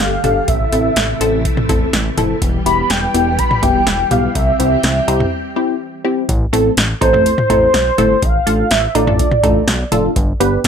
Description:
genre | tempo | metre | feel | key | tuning
synth-pop | 124 BPM | 4/4 | straight | unclear | A4 = 440 Hz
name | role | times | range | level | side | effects
warm velvety synth lead | melody | 0.0-9.7 s | C5 to B5 | -16 LUFS | right 1 dB | chorus, digital delay
ensemble organ-string | sustained chords | 0.0-6.3 s | C3 to G4 | -23 LUFS | equal | ensemble chorus
fat analog bass | bass | 0.0-10.7 s | E1 to C2 | -20 LUFS | equal | none
electro analog drum machine | drums | 0.0-10.7 s | cowbell, hi-hat, kick drum, snare drum, toms | -18 LUFS | equal | none
funky polysynth comp | accompaniment | 0.2-10.6 s | A3 to B4 | -17 LUFS | left 1 dB | chorus, plate reverb
room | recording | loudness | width
moderate studio reverb, RT60 0.6 s | none | -12 LUFS | side -7 dB against mid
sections
0.0-6.3 A section; 6.3-10.7 B section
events
break 5.3-6.3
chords
0.5 Am; 2.4 Em; 4.4 C; 6.3 Am; 8.2 Dm/A; 10.2 G

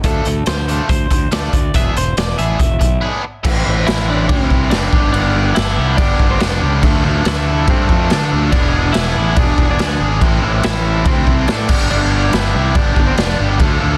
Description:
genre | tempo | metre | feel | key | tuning
indie rock | 142 BPM | 4/4 | straight | A minor | A4 = 440 Hz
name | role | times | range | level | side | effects
fuzz fingered electric bass | bass | 0.0-14.0 s | E1 to D3 | -20 LUFS | equal | overdrive
raw garage drum kit | drums | 0.0-13.7 s | crash cymbal, hi-hat, kick drum, snare drum | -18 LUFS | equal | none
twelve-string electric guitar | melody | 0.1-13.5 s | C4 to E5 | -24 LUFS | equal | plate reverb, tape echo
biting overdriven guitar | riff | 0.1-14.0 s | E3 to A4 | -23 LUFS | equal | none
room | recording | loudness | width
light reverb | dense, heavily limited modern master | -15 LUFS | mono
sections
0.0-3.4 A section; 3.4-14.0 B section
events
break 3.0-3.4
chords
0.0 Dm; 1.7 E7; 3.4 Am; 4.9 G; 6.8 Dmadd9; 8.5 E7; 10.2 Am; 11.7 G

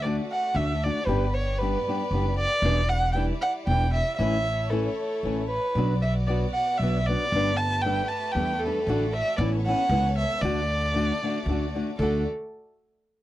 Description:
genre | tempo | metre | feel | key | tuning
mexican folk, mariachi | 115 BPM | 3/4 | swing 53% on 8ths | D major | A4 = 439 Hz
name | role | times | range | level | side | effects
dark violin | melody | 0.0-12.2 s | A4 to A5 | -27 LUFS | right 1 dB | none
flamenco guitar | accompaniment | 0.0-12.2 s | E2 to A4 | -29 LUFS | left 2 dB | none
rich studio violin section | sustained chords | 0.0-12.2 s | G3 to D5 | -36 LUFS | equal | none
upright bass | bass | 0.0-12.2 s | E1 to E2 | -27 LUFS | equal | none
room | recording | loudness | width
little or no reverb | dry, close 1970s-style studio recording | -23 LUFS | side -14 dB against mid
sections
0.0-12.0 A section; 12.0-13.2 B section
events
none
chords
0.0 D; 1.1 G; 2.6 Em7; 4.2 A; 5.8 Bm; 7.3 Gadd9; 8.9 D/A; 9.4 Aadd9; 10.4 D

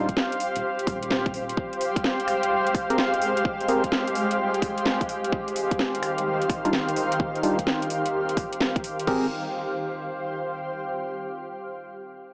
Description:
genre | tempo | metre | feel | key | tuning
UK garage, two-step garage | 128 BPM | 4/4 | swing 66% on 16ths | Ab major | A4 = 440 Hz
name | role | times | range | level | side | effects
percussive organ stab | stabs | 0.0-0.1, 2.9-3.8, 6.7-9.3 s | G3 to Bb4 | -26 LUFS | equal | chorus, analog delay
saturated sub bass | bass | 0.0-1.5, 9.1-9.3 s | Eb1 to Ab1 | -35 LUFS | equal | none
granular cloud pad | texture | 0.0-10.9 s | Eb3 to F5 | -25 LUFS | equal | built-in reverb, sidechain pumping
electronic kick drum | drums | 0.1-9.2 s | none | -28 LUFS | equal | none
house drum kit | drums | 0.1-9.2 s | crash cymbal, finger snaps, hi-hat, snare drum | -28 LUFS | equal | none
room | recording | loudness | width
light reverb | dry, gritty hardware recording, cassette tape, small speaker sound | -23 LUFS | side -28 dB against mid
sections
0.0-9.1 A section; 9.1-10.9 B section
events
filter sweep on synth stab 0.0-9.1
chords
0.0 Ebadd9; 1.6 Abmaj7; 5.1 Ebadd9; 9.1 Abmaj9

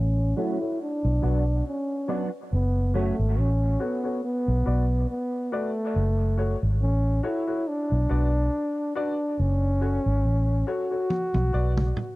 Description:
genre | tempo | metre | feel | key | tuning
dub reggae | 70 BPM | 4/4 | swing 55% on 16ths | F# minor | A4 = 440 Hz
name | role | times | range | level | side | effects
mellow trombone | melody | 0.0-12.2 s | A3 to F#4 | -28 LUFS | equal | low-pass filter, dub echo
vintage muted fingered electric bass | bass | 0.0-11.9 s | F#1 to B1 | -23 LUFS | equal | transformer saturation
clean electric guitar | accompaniment | 0.4-3.1 s | F#3 to F#4 | -34 LUFS | right 4 dB | ensemble chorus, low-pass filter, dub echo
dark upright piano | stabs | 0.4-11.7 s | F#4 to D5 | -34 LUFS | left 3 dB | low-pass filter, dub echo
toms | drums | 11.1-12.2 s | none | -30 LUFS | equal | none
room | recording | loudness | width
little or no reverb | dry, close 1970s-style studio recording | -23 LUFS | side -20 dB against mid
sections
0.0-12.2 A section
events
drum fill 11.1-12.2; break 12.0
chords
0.0 F#m; 0.8 Bm; 2.5 F#m; 4.2 Bm; 6.0 F#m; 7.7 Bm; 9.4 F#m; 11.1 Bm

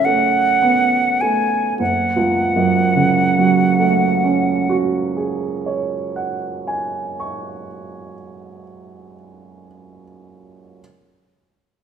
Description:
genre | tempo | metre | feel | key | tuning
classical, impressionist duo for flute and grand piano | 35 BPM (dotted quarters) | 12/8 | rubato | F# minor | A4 = 440 Hz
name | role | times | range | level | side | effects
silver concert flute | melody | 0.0-4.8 s | F#5 to G#5 | -17 LUFS | equal | none
clear baby grand piano | accompaniment | 0.0-10.8 s | F#1 to C#6 | -19 LUFS | right 4 dB | none
room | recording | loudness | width
wet recital hall reverb, RT60 1.6 s | minimal, uncompressed stereo recording | -15 LUFS | side -7 dB against mid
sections
0.0-1.8 A section; 1.8-8.6 B section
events
slowing down 0.0-1.8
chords
0.0 F#m; 1.8 F#madd9

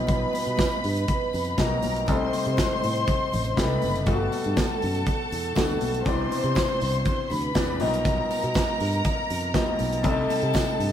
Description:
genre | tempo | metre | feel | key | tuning
disco | 120 BPM | 4/4 | straight | G major | A4 = 444 Hz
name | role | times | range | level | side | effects
clear studio string section | second line | 0.0-10.9 s | A4 to C6 | -28 LUFS | equal | none
clear grand piano | accompaniment | 0.0-10.9 s | B2 to F#4 | -28 LUFS | left 2 dB | low-pass filter
fingered electric bass | bass | 0.0-10.9 s | F#1 to C3 | -29 LUFS | right 1 dB | none
modern studio drum kit | drums | 0.1-10.9 s | hi-hat, kick drum, snare drum | -27 LUFS | equal | none
congas | percussion | 0.1-10.7 s | none | -37 LUFS | left 4 dB | none
tambourine | percussion | 0.1-10.9 s | none | -46 LUFS | right 4 dB | none
room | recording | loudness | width
wet studio reverb, RT60 0.5 s | band playing live in one room | -22 LUFS | side -10 dB against mid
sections
0.0-10.9 A section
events
filter sweep on grand piano 0.0-10.9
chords
0.0 G7alt/B; 2.1 Cm6; 4.1 Gmaj9; 6.1 Cmaj9; 7.8 G7alt/B; 10.0 Cm6

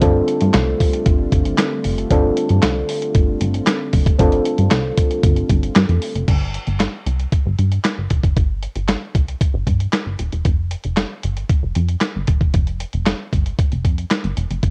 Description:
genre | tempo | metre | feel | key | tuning
early-eighties boogie funk | 115 BPM | 4/4 | straight | unclear | A4 = 440 Hz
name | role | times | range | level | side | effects
FM electric piano | accompaniment | 0.0-6.2 s | C4 to A4 | -23 LUFS | equal | cassette tape
warm analog pad | sustained chords | 0.0-6.2 s | D3 to F4 | -30 LUFS | equal | chorus, cassette tape
plucky analog bass | bass | 0.0-14.7 s | Eb1 to G2 | -22 LUFS | equal | tube saturation
dusty soul sampler-style drum kit | drums | 0.0-14.7 s | crash cymbal, handclaps, hi-hat, kick drum, snare drum | -20 LUFS | equal | cassette tape
room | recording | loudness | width
digital ambience | home recording on cassette | -18 LUFS | mono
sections
0.0-6.3 A section; 6.3-14.7 B section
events
none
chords
0.0 G9sus4; 6.3 N.C.; 10.5 Fsus2

